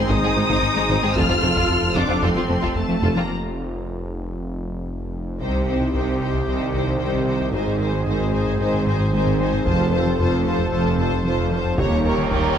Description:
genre	cinematic, hybrid orchestral and electronic film score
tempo	113 BPM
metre	4/4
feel	straight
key	unclear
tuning	A4 = 439 Hz
part	rich symphonic violin section	melody	0.0-12.6 s	G5 to F6	-28 LUFS	left 3 dB	none
part	warm symphonic violin section	second line	0.0-12.6 s	Ab3 to Db5	-27 LUFS	left 3 dB	none
part	warm symphonic viola section	accompaniment	0.0-12.6 s	A3 to G4	-28 LUFS	right 1 dB	none
part	warm analog pad	sustained chords	0.0-12.6 s	Eb3 to Db5	-26 LUFS	equal	chorus
part	round analog bass	riff	0.0-12.5 s	C2 to Ab3	-27 LUFS	left 2 dB	none
part	rich symphonic cello section	bass	0.0-12.6 s	Eb2 to C3	-27 LUFS	right 2 dB	none
part	swelling detuned saw bass	bass	0.0-12.6 s	Eb1 to C2	-27 LUFS	equal	none
part	dark tuba	bass	0.1-3.1 s	F1 to Ab1	-29 LUFS	right 3 dB	none
part	rich symphonic double bass section	bass	0.1-12.6 s	F1 to Eb2	-26 LUFS	right 3 dB	none
part	taiko ensemble	drums	0.1-6.4, 9.7-12.6 s	none	-29 LUFS	equal	none
part	reverse cymbal	sound effects	12.0-12.6 s	none	-25 LUFS	right 4 dB	none
room	moderate scoring stage reverb, RT60 1.9 s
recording	none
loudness	-18 LUFS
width	side -8 dB against mid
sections	0.0-5.4 A section; 5.4-12.6 B section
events	break 3.3-5.4; drum fill 4.9-5.4; reverse cymbal 12.0-12.6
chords	0.0 Ab; 1.2 F; 5.4 Cm; 7.5 Ab; 9.7 F; 11.8 Eb7

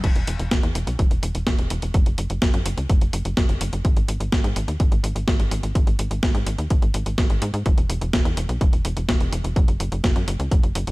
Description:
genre	italo disco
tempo	126 BPM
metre	4/4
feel	straight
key	unclear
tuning	A4 = 440 Hz
part	tight sequencer bass	bass	0.0-10.9 s	E1 to G#2	-24 LUFS	equal	none
part	clean 12-bit digital drum machine	drums	0.0-10.9 s	crash cymbal, hi-hat, snare drum	-27 LUFS	equal	gated reverb
part	electronic kick drum	drums	0.0-10.6 s	none	-19 LUFS	equal	none
room	little or no reverb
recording	none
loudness	-19 LUFS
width	side -22 dB against mid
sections	0.0-10.9 A section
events	none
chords	none

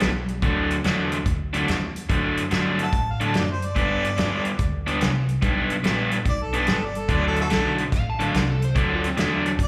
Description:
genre	electric blues shuffle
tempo	144 BPM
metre	4/4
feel	swing 67% on 8ths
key	D mixolydian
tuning	A4 = 440 Hz
part	crunchy overdriven guitar	riff	0.0-9.5 s	G2 to D4	-26 LUFS	equal	slapback echo
part	upright bass	bass	0.0-9.7 s	G1 to A2	-29 LUFS	equal	none
part	natural country drum kit	drums	0.0-9.7 s	hi-hat, kick drum, snare drum	-29 LUFS	equal	none
part	mellow harmonica	melody	2.8-9.7 s	E4 to A5	-32 LUFS	equal	slapback echo
part	overdriven slide guitar	second line	8.0-9.5 s	C4 to A5	-33 LUFS	equal	slapback echo
room	light reverb, small room ambience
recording	live gig heard through the venue's PA, club reverb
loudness	-23 LUFS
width	mono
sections	0.0-9.7 A section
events	none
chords	0.4 D; 3.8 G; 7.1 D

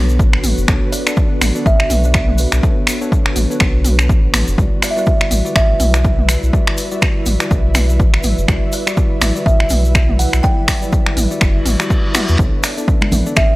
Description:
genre	afro house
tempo	123 BPM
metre	4/4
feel	swing 58% on 16ths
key	unclear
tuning	A4 = 438 Hz
part	ethereal airy pad	sustained chords	0.0-13.6 s	B3 to E5	-26 LUFS	right 1 dB	ensemble chorus, built-in reverb, tremolo, sidechain pumping
part	bell-like tine electric piano	stabs	0.0-13.6 s	F#3 to F#5	-24 LUFS	left 2 dB	sidechain pumping, analog delay
part	warm sub bass	bass	0.0-13.5 s	F#1 to E2	-16 LUFS	equal	tube saturation, sidechain pumping
part	egg shaker	percussion	0.1-13.5 s	none	-29 LUFS	left 1 dB	none
part	electronic kick drum	drums	0.2-13.5 s	none	-15 LUFS	equal	overdrive, studio reverb
part	deep house drum kit	drums	0.3-13.5 s	finger snaps, hi-hat, toms	-18 LUFS	equal	overdrive, studio reverb
part	buzzing kalimba	melody	0.9-13.6 s	B4 to G5	-23 LUFS	right 2 dB	none
part	reverse cymbal	sound effects	11.6-12.4 s	none	-25 LUFS	equal	none
part	congas	percussion	13.0-13.2 s	none	-20 LUFS	right 1 dB	none
room	little or no reverb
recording	dry, gritty hardware recording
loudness	-12 LUFS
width	side -19 dB against mid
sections	0.0-13.6 A section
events	reverse cymbal 11.6-12.4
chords	0.0 Bm9; 4.6 Em9; 12.4 Bm9

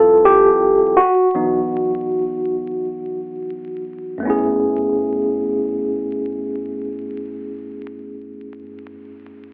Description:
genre	R&B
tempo	free time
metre	none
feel	none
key	F# minor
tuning	A4 = 438 Hz
part	tine electric piano	accompaniment	0.0-9.5 s	F#2 to A4	-19 LUFS	equal	none
room	wet studio ambience, RT60 0.5 s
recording	vinyl crackle, telephone sound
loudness	-19 LUFS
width	mono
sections	0.0-4.2 A section; 4.2-7.1 B section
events	tine electric piano solo 0.0-4.2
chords	0.0 Dm11 (rootless); 1.0 Esus2; 4.2 F#m11

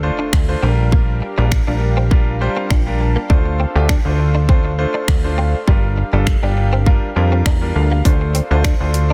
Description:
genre	dance-pop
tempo	101 BPM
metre	4/4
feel	straight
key	D minor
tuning	A4 = 442 Hz
part	clear concert grand piano	accompaniment	0.0-9.1 s	G3 to A5	-26 LUFS	equal	sidechain pumping
part	warm analog pad	sustained chords	0.0-9.1 s	D4 to F5	-31 LUFS	equal	chorus, sidechain pumping
part	plucky analog bass	bass	0.0-9.1 s	G1 to F2	-19 LUFS	equal	sidechain pumping
part	impact	sound effects	0.1-0.9 s	none	-46 LUFS	equal	none
part	direct-recorded clean electric guitar	riff	0.2-9.1 s	G3 to D4	-30 LUFS	equal	ensemble chorus
part	pop drum kit	drums	0.3-9.1 s	finger snaps, hi-hat, kick drum	-18 LUFS	equal	soft clipping on snare
room	digital ambience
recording	dense, heavily limited modern master, faint mains hum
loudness	-16 LUFS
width	mono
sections	0.0-9.1 A section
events	impact 0.0-0.9; grand piano fill 2.1-3.3, 7.2-8.1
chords	0.0 Dm7; 0.6 Bb6; 3.3 Dm7; 5.7 Gm7; 8.1 Dm7

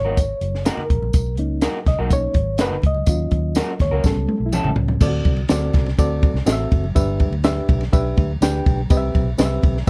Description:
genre	uptempo 1960s-style soul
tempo	124 BPM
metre	4/4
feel	straight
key	unclear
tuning	A4 = 440 Hz
part	reed electric piano	accompaniment	0.0-9.9 s	G2 to G5	-26 LUFS	equal	fast tremolo
part	electric guitar through a small old amp	stabs	0.0-4.7 s	G3 to A#4	-28 LUFS	equal	none
part	vintage muted fingered electric bass	bass	0.0-9.9 s	F#1 to D#2	-25 LUFS	equal	none
part	congas	percussion	0.0-9.7 s	none	-36 LUFS	equal	none
part	compact cocktail drum kit	drums	0.2-9.9 s	crash cymbal, hi-hat, kick drum, ride cymbal, snare drum, toms	-21 LUFS	equal	none
part	tambourine	percussion	0.2-9.9 s	none	-37 LUFS	equal	none
room	little or no reverb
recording	dark, warm production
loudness	-19 LUFS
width	mono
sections	0.0-5.0 A section; 5.0-9.9 B section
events	reed electric piano solo 0.0-5.0; drum fill 4.0-5.0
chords	0.0 F#6; 1.1 Bmaj7; 3.1 D#m7; 4.0 A7; 5.0 D7; 7.0 G6; 8.9 Cmaj7

